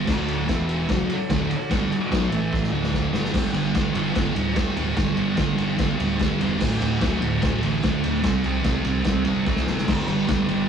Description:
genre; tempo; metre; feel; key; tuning
garage rock duo or trio; 147 BPM; 4/4; straight; unclear; A4 = 439 Hz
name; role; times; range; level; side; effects
thick fuzz guitar; riff; 0.0-10.7 s; D2 to C4; -23 LUFS; right 1 dB; distortion
fuzz fingered electric bass; bass; 0.0-10.7 s; D1 to G2; -28 LUFS; right 1 dB; overdrive
combo organ; sustained chords; 0.1-3.3, 9.9-10.7 s; E4 to E5; -36 LUFS; left 1 dB; none
vintage drum kit; drums; 0.1-10.6 s; crash cymbal, kick drum, ride cymbal, snare drum; -26 LUFS; equal; none
room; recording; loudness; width
light reverb; rough rehearsal-room recording, tube saturation, small room ambience; -20 LUFS; side -7 dB against mid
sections
0.0-3.3 A section; 3.3-10.7 B section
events
drum fill 2.5-3.3, 9.5-9.9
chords
0.1 D; 0.5 E5; 0.9 D; 2.3 A5; 2.7 D; 3.3 G5; 6.6 D5; 8.2 C5; 9.9 G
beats
| 0.07 0.47 0.89 1.29 | 1.70 2.11 2.52 2.93 | 3.34 3.74 4.15 4.56 | 4.97 5.38 5.79 6.19 | 6.60 7.01 7.42 7.83 | 8.24 8.64 9.05 9.46 | 9.87 10.28

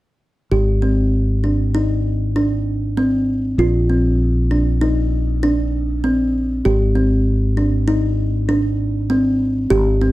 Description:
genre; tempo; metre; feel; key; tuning
progressive instrumental, progressive; 98 BPM; 5/4; straight; Ab lydian; A4 = 439 Hz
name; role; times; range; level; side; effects
kalimba; arpeggios; 0.5-10.1 s; C4 to G4; -18 LUFS; equal; none
mellow fretless electric bass; bass; 0.5-10.1 s; Ab1 to Bb1; -18 LUFS; equal; none
room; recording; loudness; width
moderate studio reverb, RT60 0.9 s; none; -15 LUFS; side -17 dB against mid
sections
0.5-10.1 A section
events
none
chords
0.5 Ab; 3.6 Bbadd9; 6.7 Ab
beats
| 0.52 1.13 1.75 2.36 2.97 | 3.59 4.20 4.81 5.42 6.04 | 6.65 7.26 7.87 8.48 9.10 | 9.71

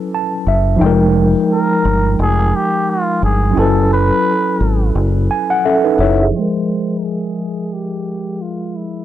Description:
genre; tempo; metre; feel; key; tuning
hip hop; 87 BPM; 4/4; swing 61% on 16ths; unclear; A4 = 440 Hz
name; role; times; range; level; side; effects
mellow tine electric piano; accompaniment; 0.0-9.0 s; F3 to A5; -16 LUFS; equal; slow stereo tremolo, cassette tape, low-pass filter
deep dub fingered electric bass; bass; 0.5-6.3 s; F1 to Ab1; -15 LUFS; equal; none
trumpet with cup mute; melody; 1.5-9.0 s; E4 to C5; -20 LUFS; equal; low-pass filter
room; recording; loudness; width
studio ambience; dry, gritty hardware recording, transformer saturation, low-pass filter; -13 LUFS; side -12 dB against mid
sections
0.0-6.3 A section; 6.3-9.0 B section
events
filter sweep 6.3-9.0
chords
0.0 Gbm11; 0.8 Fm11; 3.6 Gbm11; 6.3 Fm11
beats
0.12 | 0.80 1.49 2.18 2.87 | 3.56 4.25 4.94 5.63 | 6.32 7.01 7.70 8.39

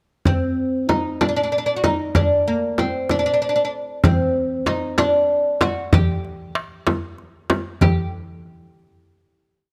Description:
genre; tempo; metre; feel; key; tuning
Arabic maqam ensemble; 64 BPM (dotted quarters); 6/8; straight; G maqam nahawand; A4 = 437 Hz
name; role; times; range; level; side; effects
oud; melody; 0.3-8.1 s; Bb3 to G4; -22 LUFS; equal; none
frame drum; percussion; 0.3-8.1 s; none; -22 LUFS; equal; none
darbuka; percussion; 4.0-8.1 s; none; -26 LUFS; equal; none
room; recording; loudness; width
light reverb; close, detailed microphones; -20 LUFS; mono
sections
0.3-7.8 A section; 7.8-9.7 final note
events
none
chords
none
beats
| 0.26 1.21 | 2.15 3.10 | 4.04 4.98 | 5.93 6.87 | 7.81

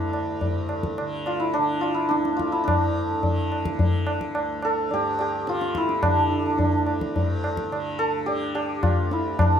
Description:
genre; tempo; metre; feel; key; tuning
indian classical, Hindustani; 107 BPM; 3/4; straight; D raga bageshri; A4 = 442 Hz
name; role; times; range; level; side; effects
santur; melody; 0.0-9.6 s; D4 to A4; -24 LUFS; right 1 dB; none
tanpura; drone; 0.0-9.6 s; D2 to D3; -33 LUFS; left 1 dB; none
tabla; percussion; 0.1-9.6 s; none; -25 LUFS; left 1 dB; none
room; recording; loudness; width
light reverb; close, detailed microphones; -22 LUFS; side -8 dB against mid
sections
0.0-2.7 A section; 2.7-9.6 B section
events
none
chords
none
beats
0.41 | 0.97 1.54 2.10 | 2.67 3.23 3.79 | 4.35 4.92 5.47 | 6.04 6.60 7.16 | 7.71 8.27 8.83 | 9.39

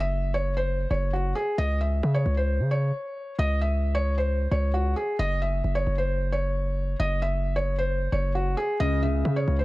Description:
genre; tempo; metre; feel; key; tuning
hip hop, trap; 133 BPM; 4/4; half-time; unclear; A4 = 440 Hz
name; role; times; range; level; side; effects
felt-muted upright piano; melody; 0.0-9.6 s; F#4 to E5; -28 LUFS; equal; ping-pong delay
distorted 808-style bass; bass; 0.0-9.6 s; F#1 to C#3; -25 LUFS; equal; distortion
dark concert grand piano; accompaniment; 8.8-9.6 s; C#3; -28 LUFS; left 2 dB; none
room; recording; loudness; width
studio reverb; none; -23 LUFS; side -19 dB against mid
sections
0.0-9.6 A section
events
none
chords
0.0 F#5; 1.6 N.C.; 5.2 F#5; 8.8 C#m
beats
0.23 0.68 1.13 | 1.58 2.03 2.48 2.94 | 3.39 3.84 4.29 4.74 | 5.19 5.64 6.09 6.54 | 7.00 7.45 7.90 8.35 | 8.80 9.25

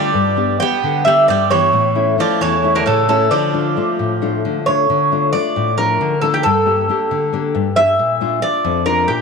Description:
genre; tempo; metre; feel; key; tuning
greek folk, Greek bouzouki band; 268 BPM (eighths); 7/8; straight; D harmonic minor; A4 = 441 Hz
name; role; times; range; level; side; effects
Greek bouzouki; melody; 0.0-9.2 s; G4 to G5; -15 LUFS; right 2 dB; none
Greek bouzouki; second line; 0.0-4.6 s; C#3 to B3; -21 LUFS; right 11 dB; none
nylon-string guitar; accompaniment; 0.0-9.2 s; E2 to G4; -19 LUFS; left 7 dB; none
room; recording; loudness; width
moderate plate reverb, RT60 3.1 s; 1960s-style stereo with parts hard left and right; -13 LUFS; side -5 dB against mid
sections
0.0-4.9 A section; 4.9-9.2 A section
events
speeding up 0.0-9.2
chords
0.1 G; 1.7 A; 3.3 Dm; 6.4 Gm; 8.0 Bb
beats
| 0.14 0.37 0.60 0.83 1.06 1.29 1.51 | 1.74 1.97 2.19 2.42 2.65 2.87 3.10 | 3.32 3.55 3.77 4.00 4.22 4.45 4.67 | 4.89 5.12 5.34 5.56 5.78 6.00 6.23 | 6.45 6.67 6.89 7.11 7.33 7.55 7.77 | 7.99 8.21 8.43 8.65 8.87 9.09

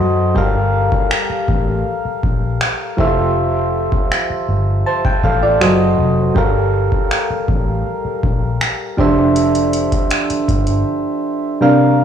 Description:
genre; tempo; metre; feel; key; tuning
contemporary R&B; 80 BPM; 4/4; straight; G dorian; A4 = 440 Hz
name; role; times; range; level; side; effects
soft electric-piano-like synth keys; accompaniment; 0.0-12.0 s; C3 to A5; -16 LUFS; equal; chorus
vintage muted fingered electric bass; bass; 0.0-10.8 s; F1 to F#2; -19 LUFS; equal; none
booming analog drum machine; drums; 0.4-10.8 s; finger snaps, hi-hat, kick drum; -18 LUFS; equal; overdrive, soft clipping on snare
room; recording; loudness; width
light reverb, digital ambience; blown-out, overdriven recording, overdrive, studio reverb; -14 LUFS; side -8 dB against mid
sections
0.0-12.0 A section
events
none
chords
0.4 Gm7; 3.0 Fmaj13; 5.6 F#dim7; 6.4 Gm7; 9.0 Dm11/F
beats
| 0.36 1.11 1.86 2.61 | 3.36 4.11 4.86 5.61 | 6.36 7.11 7.86 8.61 | 9.36 10.11 10.86 11.61

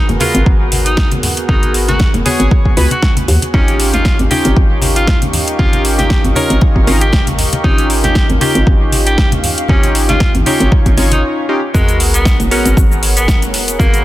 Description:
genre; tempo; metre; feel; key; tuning
deep house; 117 BPM; 4/4; swing 55% on 16ths; G# dorian; A4 = 440 Hz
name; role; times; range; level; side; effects
bright tenor saxophone; melody; 0.0-14.0 s; G#3 to A#4; -20 LUFS; equal; dub echo
warm analog pad; sustained chords; 0.0-14.0 s; B3 to C#6; -27 LUFS; right 1 dB; chorus, sidechain pumping
warm analog keys; stabs; 0.0-14.0 s; B3 to C#5; -18 LUFS; equal; chorus, sidechain pumping, dub echo
hollow knocking FM bass; bass; 0.0-14.0 s; F#1 to D#2; -15 LUFS; equal; sidechain pumping
warbly tape-like pad; texture; 0.0-14.0 s; G#4 to G5; -28 LUFS; left 1 dB; chorus, built-in reverb, sidechain pumping
deep house drum kit; drums; 0.1-14.0 s; hi-hat, shaker, snare drum; -18 LUFS; equal; overdrive
congas; percussion; 0.1-11.2 s; none; -20 LUFS; left 1 dB; none
electronic kick drum; drums; 0.5-13.9 s; none; -12 LUFS; equal; overdrive
sub drop; sound effects; 11.7-13.8 s; none; -20 LUFS; equal; none
room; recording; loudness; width
little or no reverb; dense, heavily limited modern master; -10 LUFS; side -15 dB against mid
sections
0.0-11.7 A section; 11.7-14.0 B section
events
fade-in on ambient pad 0.0-11.7; break 11.2-11.7; drop 11.7-14.0; impact 11.7-13.8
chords
0.0 G#m9; 3.5 D#9/G#; 11.7 G#m9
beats
0.46 0.97 | 1.49 2.00 2.51 3.03 | 3.54 4.05 4.57 5.08 | 5.59 6.10 6.62 7.13 | 7.64 8.15 8.67 9.18 | 9.69 10.21 10.72 11.23 | 11.74 12.26 12.77 13.28 | 13.80

